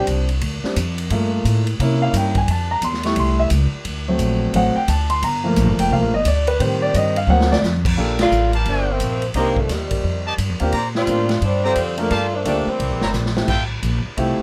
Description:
jazz, big band swing; 175 BPM; 4/4; swing 63% on 8ths; G minor; A4 = 437 Hz
warm grand piano; accompaniment; 0.0-14.4 s; Eb3 to C#6; -22 LUFS; equal
upright bass; bass; 0.0-14.4 s; F1 to C3; -23 LUFS; equal
swinging big-band drum kit; drums; 0.1-14.3 s; crash cymbal, hi-hat, kick drum, ride cymbal, snare drum; -28 LUFS; equal
mellow saxophone section; melody; 8.2-13.4 s; Bb2 to F4; -23 LUFS; equal
clear trumpet section; stabs; 8.5-13.6 s; E4 to Bb5; -26 LUFS; equal
little or no reverb; -19 LUFS; mono
0.0-8.0 A section; 8.0-14.4 B section
grand piano solo 0.0-8.0; drum fill 7.3-7.6, 13.1-13.5; band accent 8.1
0.0 Bb69 (rootless); 1.1 Gm9; 1.8 C7b9; 2.5 Fmaj9; 3.9 D7; 5.2 Gm9; 6.6 Am7b5; 7.3 D7alt; 8.0 Gm9; 9.4 Cm7; 10.0 F13; 10.7 Bb69; 12.1 Gm9; 12.8 C7b9; 13.5 Fmaj9
0.08 0.42 0.77 | 1.11 1.45 1.80 2.14 | 2.48 2.83 3.17 3.51 | 3.86 4.20 4.54 4.89 | 5.23 5.57 5.92 6.26 | 6.60 6.95 7.29 7.63 | 7.97 8.32 8.66 9.01 | 9.35 9.70 10.04 10.39 | 10.73 11.07 11.42 11.76 | 12.11 12.45 12.80 13.14 | 13.49 13.83 14.18

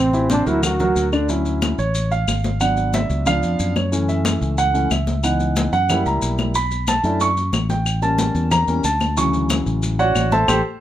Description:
Afro-Cuban jazz; 183 BPM; 4/4; straight; D major; A4 = 440 Hz
breathy trombone; melody; 0.0-1.1 s; C4 to F#4; -20 LUFS; equal
dark concert grand piano; accompaniment; 0.0-10.6 s; C3 to C#6; -20 LUFS; right 1 dB
fingered electric bass; bass; 0.0-10.6 s; G#1 to F#2; -22 LUFS; equal
congas; percussion; 0.1-10.6 s; -26 LUFS; left 2 dB
maracas; percussion; 0.1-10.6 s; -31 LUFS; left 5 dB
claves; percussion; 0.6-10.6 s; -26 LUFS; left 5 dB
light reverb; -17 LUFS; side -12 dB against mid
0.0-1.3 A section; 1.3-10.8 B section
grand piano solo 1.3-10.8; band accent 10.5-10.8
0.0 Am7; 0.6 Daug; 1.3 Dmaj9; 2.6 G#m7b5; 3.3 C#7b9; 3.9 F#m7; 5.2 C#m9; 5.9 F#7b9; 6.6 Bm11; 7.9 A7b9; 9.2 Dmaj9
0.30 0.63 0.96 | 1.29 1.62 1.95 2.28 | 2.61 2.94 3.27 3.59 | 3.92 4.25 4.58 4.91 | 5.24 5.57 5.89 6.22 | 6.55 6.88 7.21 7.54 | 7.86 8.19 8.52 8.85 | 9.18 9.50 9.83 10.16 | 10.49

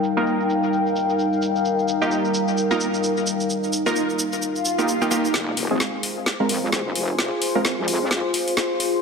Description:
bass house; 130 BPM; 4/4; swing 59% on 16ths; F minor; A4 = 440 Hz
dark analog pad; sustained chords; 0.0-9.0 s; G3 to C6; -26 LUFS; equal; chorus, phaser
orchestra-hit-like synth stab; stabs; 0.0-9.0 s; Ab3 to Bb4; -24 LUFS; right 1 dB; built-in reverb, ping-pong delay
garage drum kit; drums; 0.0-8.9 s; cabasa, hi-hat, snare drum; -26 LUFS; equal
warbly tape-like pad; texture; 0.0-9.0 s; Eb4 to Ab5; -26 LUFS; left 2 dB; chorus, built-in reverb, phaser
swell; sound effects; 4.5-5.3 s; -27 LUFS; left 1 dB
wobble bass; bass; 5.3-8.2 s; F1 to F2; -27 LUFS; left 1 dB; chorus, tube saturation, high-pass filter
moderate lush hall reverb, RT60 1.8 s; heavily compressed radio sound, low-pass filter; -20 LUFS; side -5 dB against mid
0.0-5.3 A section; 5.3-9.0 B section
filter sweep 0.0-5.3; swell 4.5-5.3; build-up 5.3-9.0; drum fill 5.3-9.0; filter sweep on synth stab 5.3-9.0
0.0 Ebadd9; 5.3 Fm
0.26 0.72 1.19 | 1.65 2.11 2.57 3.03 | 3.49 3.96 4.42 4.88 | 5.34 5.80 6.26 6.72 | 7.19 7.65 8.11 8.57

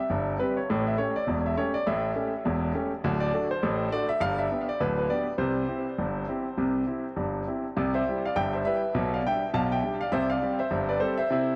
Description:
ragtime piano; 102 BPM; 2/4; swing 60% on 16ths; C major; A4 = 442 Hz
clear concert grand piano; solo; 0.0-11.6 s; D1 to A5; -28 LUFS; equal; dub echo
moderate spring reverb, RT60 1.3 s, studio ambience; echo-heavy mix, cassette tape; -28 LUFS; mono
0.0-7.8 A section; 7.8-11.6 B section
0.0 C5; 0.7 A7; 3.0 D; 4.2 G; 5.4 C; 8.9 G/B; 10.1 C
0.11 | 0.69 1.28 | 1.87 2.46 | 3.04 3.63 | 4.21 4.80 | 5.39 5.99 | 6.58 7.17 | 7.76 8.35 | 8.94 9.53 | 10.12 10.70 | 11.29

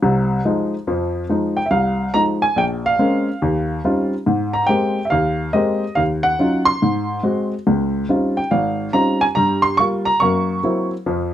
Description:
solo jazz; 141 BPM; 4/4; swing 65% on 8ths; F minor; A4 = 441 Hz
dark baby grand piano; solo; 0.0-11.3 s; Ab1 to Db6; -16 LUFS; equal
light reverb; -16 LUFS; side -11 dB against mid
0.9-11.3 A section
0.0 Fm7; 2.6 Bbm9; 3.4 Eb13; 4.3 Abmaj9; 6.0 Ebm9; 6.8 Ab7; 7.7 Dbmaj9#11; 9.4 Gm7; 10.2 Gb7#11
0.00 0.43 | 0.85 1.28 1.70 2.13 | 2.55 2.98 3.40 3.83 | 4.26 4.68 5.11 5.53 | 5.96 6.38 6.81 7.23 | 7.66 8.09 8.51 8.94 | 9.36 9.79 10.21 10.64 | 11.06

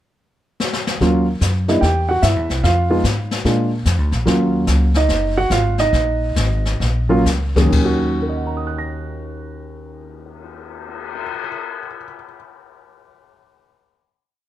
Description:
jazz piano trio; 125-148 BPM; 4/4; swing 66% on 8ths; Eb minor; A4 = 440 Hz
jazz brush drum kit; drums; 0.6-11.5 s; brushed snare drum, crash cymbal, cymbal swell, hi-hat, kick drum, snare drum; -24 LUFS; left 3 dB
dark baby grand piano; melody; 1.0-12.4 s; Eb2 to Bb6; -18 LUFS; right 1 dB
upright bass; bass; 1.0-11.3 s; Gb1 to Bb2; -19 LUFS; equal
little or no reverb; -16 LUFS; side -13 dB against mid
0.0-1.0 pickup bar; 1.0-7.7 A section; 7.7-11.6 final chord
drum fill 0.6-1.0; slowing down 4.3-7.7
0.0 N.C.; 1.0 Ebm7; 1.8 C; 2.6 Fm; 3.4 Bb7; 4.3 Ebm7
0.19 0.59 | 1.00 1.41 1.82 2.23 | 2.63 3.04 3.45 3.85 | 4.26 4.67 5.08 5.50 | 5.92 6.35 6.79 7.25 | 7.72 8.20 8.68 9.16 | 9.64 10.12 10.60 11.08

